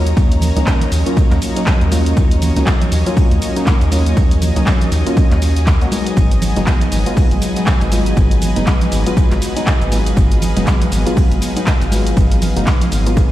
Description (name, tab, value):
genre	deep house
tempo	120 BPM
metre	4/4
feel	swing 58% on 16ths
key	unclear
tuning	A4 = 440 Hz
part	warm analog pad	sustained chords	0.0-13.3 s	Gb3 to F5	-26 LUFS	equal	chorus, tremolo, vintage 12-bit sampler grit, sidechain pumping
part	warm analog keys	stabs	0.0-13.3 s	Gb3 to Gb4	-21 LUFS	left 1 dB	chorus, sidechain pumping, low-pass filter, digital delay
part	rubbery square bass	bass	0.0-13.3 s	Gb1 to Eb2	-16 LUFS	equal	sidechain pumping
part	muted studio string section	texture	0.0-13.3 s	Gb3 to Bb5	-27 LUFS	left 2 dB	sidechain pumping
part	punchy analog drum machine	drums	0.1-13.3 s	handclaps, hi-hat, rim click, shaker	-24 LUFS	equal	none
part	breakbeat sampler-style drum kit	drums	0.2-13.3 s	hi-hat, ride cymbal, snare drum	-34 LUFS	right 2 dB	none
part	electronic kick drum	drums	0.2-13.3 s	none	-13 LUFS	equal	none
part	congas	percussion	0.4-12.9 s	none	-25 LUFS	right 4 dB	none
room	digital ambience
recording	played on a big sound system in a bare room, stone room reverb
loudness	-12 LUFS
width	side -14 dB against mid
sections	0.0-13.3 A section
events	filter sweep on synth keys 0.0-13.3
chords	0.0 Ebm7; 5.9 Abm7